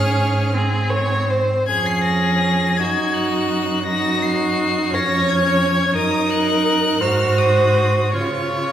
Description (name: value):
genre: classical, slow romantic movement for string quartet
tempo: 56 BPM (dotted quarters)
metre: 6/8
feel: uneven beats, rubato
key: Db major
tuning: A4 = 440 Hz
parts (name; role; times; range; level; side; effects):
- rich violin; melody; 0.0-8.7 s; Db6 to C7; -23 LUFS; left 5 dB; none
- rich violin; second line; 0.0-8.7 s; Gb4 to Db5; -21 LUFS; right 1 dB; none
- rich viola; accompaniment; 0.0-8.7 s; C4 to Gb4; -23 LUFS; right 2 dB; none
- rich cello; bass; 0.0-8.7 s; F2 to Db3; -22 LUFS; right 1 dB; none
room: wet recital hall reverb, RT60 1.6 s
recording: heard from further back in the room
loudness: -16 LUFS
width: side -10 dB against mid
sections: 0.0-8.7 A section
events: none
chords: 0.0 Db/Ab; 0.5 Ab; 1.7 Db/F; 2.8 Ebm/Gb; 4.9 Db/F; 6.0 Ebm/Gb; 7.0 Ab7; 8.1 Db